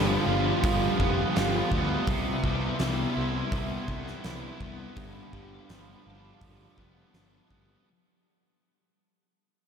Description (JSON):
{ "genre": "rock, shoegaze and dream pop", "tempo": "83 BPM", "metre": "4/4", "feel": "straight", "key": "unclear", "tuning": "A4 = 441 Hz", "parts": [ { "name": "chorused pulse-width pad", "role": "sustained chords", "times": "0.0-7.9 s", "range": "B3 to C6", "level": "-35 LUFS", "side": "left 1 dB", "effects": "none" }, { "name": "biting overdriven guitar", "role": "riff", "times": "0.0-7.9 s", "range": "G2 to F4", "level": "-33 LUFS", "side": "right 7 dB", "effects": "reverse reverb" }, { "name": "crunchy overdriven guitar", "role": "riff", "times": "0.0-2.1 s", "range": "G2 to G3", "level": "-33 LUFS", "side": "equal", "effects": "ensemble chorus" }, { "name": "thick fuzz guitar", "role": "riff", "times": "0.0-7.9 s", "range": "G2 to F4", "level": "-33 LUFS", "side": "left 6 dB", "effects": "distortion, analog chorus" }, { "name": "fuzz picked electric bass", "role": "bass", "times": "0.0-7.8 s", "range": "F1 to D2", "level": "-32 LUFS", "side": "equal", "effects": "overdrive" }, { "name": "huge arena drum kit", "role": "drums", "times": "0.6-7.7 s", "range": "hi-hat, kick drum, snare drum", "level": "-32 LUFS", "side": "equal", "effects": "none" } ], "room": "wet huge ambient reverb, RT60 5.3 s", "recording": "dreamy mix soaked in reverb", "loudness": "-25 LUFS", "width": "side -7 dB against mid", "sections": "0.0-7.9 A section", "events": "fade-out 0.0-7.9", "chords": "0.0 G7; 2.1 Cmaj7; 5.0 G7" }